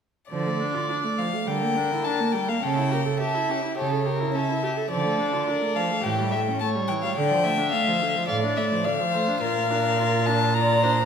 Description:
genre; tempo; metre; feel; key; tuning
quick classical-period movement for string quartet; 106 BPM; 4/4; rubato; D minor; A4 = 436 Hz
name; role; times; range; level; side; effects
warm violin; melody; 0.3-11.1 s; C#5 to Bb5; -26 LUFS; left 4 dB; none
warm viola; accompaniment; 0.3-11.1 s; D3 to A4; -28 LUFS; right 2 dB; none
rich cello; bass; 0.3-11.1 s; A2 to D3; -28 LUFS; right 4 dB; none
dark violin; second line; 1.5-11.1 s; G4 to F5; -28 LUFS; left 1 dB; none
room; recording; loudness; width
wet recital hall reverb, RT60 1.8 s; recorded in a church or concert hall; -22 LUFS; side -7 dB against mid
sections
0.3-11.1 A section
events
none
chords
0.3 Dm; 1.5 Em7b5/D; 2.6 A7/C#; 4.9 Dm; 6.0 A7; 7.2 Dm; 9.4 Bb

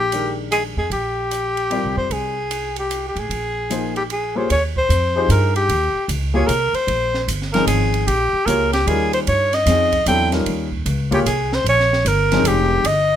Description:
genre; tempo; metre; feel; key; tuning
modal jazz; 151 BPM; 3/4; swing 65% on 8ths; Eb mixolydian from 4.5 s; A4 = 440 Hz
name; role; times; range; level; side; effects
breathy alto saxophone; melody; 0.0-13.2 s; G4 to G5; -19 LUFS; equal; none
upright bass; bass; 0.0-13.2 s; F1 to G2; -22 LUFS; right 1 dB; none
warm baby grand piano; accompaniment; 0.1-12.8 s; Eb3 to D5; -22 LUFS; left 3 dB; none
open jazz drum kit; drums; 0.1-13.0 s; hi-hat, kick drum, ride cymbal, snare drum; -28 LUFS; right 4 dB; none
room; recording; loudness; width
light reverb; minimal, uncompressed stereo recording; -16 LUFS; side -10 dB against mid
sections
0.0-4.5 A section; 4.5-13.2 B section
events
none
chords
0.0 Fm/Bb; 4.5 Eb9

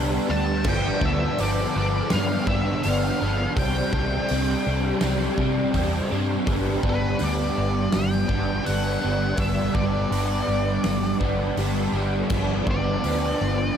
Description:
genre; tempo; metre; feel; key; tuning
rock, shoegaze and dream pop; 82 BPM; 4/4; straight; G major; A4 = 442 Hz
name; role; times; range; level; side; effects
crunchy overdriven guitar; riff; 0.0-13.8 s; G2 to D4; -24 LUFS; equal; ensemble chorus
vintage muted fingered electric bass; bass; 0.0-13.7 s; G1 to C3; -27 LUFS; equal; none
octave-fuzz lead guitar; melody; 0.3-13.8 s; B4 to A5; -31 LUFS; left 1 dB; distortion, analog delay
huge arena drum kit; drums; 0.6-13.2 s; crash cymbal, hi-hat, kick drum, snare drum; -30 LUFS; equal; none
room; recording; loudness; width
moderate huge ambient reverb, RT60 6.2 s; dreamy mix soaked in reverb; -21 LUFS; side -8 dB against mid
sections
0.0-6.5 A section; 6.5-13.8 B section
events
none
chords
0.0 G; 0.7 G7; 3.6 Csus2; 6.5 G; 12.3 G7

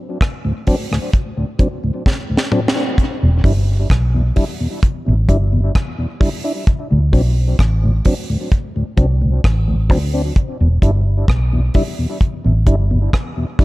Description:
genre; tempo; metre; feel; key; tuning
dub reggae; 65 BPM; 4/4; straight; E minor; A4 = 435 Hz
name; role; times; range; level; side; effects
deep reggae drum kit; drums; 0.2-13.6 s; hi-hat, kick drum, rim click, snare drum, toms; -16 LUFS; equal; none
mellow tonewheel organ; accompaniment; 0.4-13.6 s; D2 to E4; -21 LUFS; equal; chorus vibrato, slow rotary speaker, tape echo
vintage muted fingered electric bass; bass; 3.2-13.1 s; E1 to D2; -14 LUFS; equal; none
room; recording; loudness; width
light reverb, small room ambience; dark, warm production; -14 LUFS; side -19 dB against mid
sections
0.0-13.6 A section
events
break 0.0-3.0; drum fill 2.1-3.0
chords
0.0 D7; 3.0 Em7; 6.7 D7; 10.4 Em7

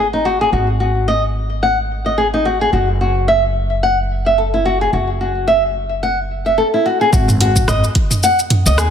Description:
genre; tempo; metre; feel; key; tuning
organic downtempo; 109 BPM; 4/4; swing 57% on 16ths; unclear; A4 = 440 Hz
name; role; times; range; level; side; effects
flamenco guitar; arpeggios; 0.0-8.9 s; D#4 to F#5; -15 LUFS; left 1 dB; ping-pong delay
upright bass; bass; 0.0-8.9 s; F#1 to D#2; -19 LUFS; equal; sidechain pumping
deep house drum kit; drums; 7.1-8.9 s; hi-hat, rim click, shaker, toms; -17 LUFS; right 1 dB; studio reverb
electronic kick drum; drums; 7.1-8.1 s; none; -15 LUFS; equal; studio reverb
room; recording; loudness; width
light reverb, digital ambience; none; -13 LUFS; side -8 dB against mid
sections
0.0-7.1 A section; 7.1-8.9 B section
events
none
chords
0.0 G#5; 2.7 F#7(no3); 7.1 G#5

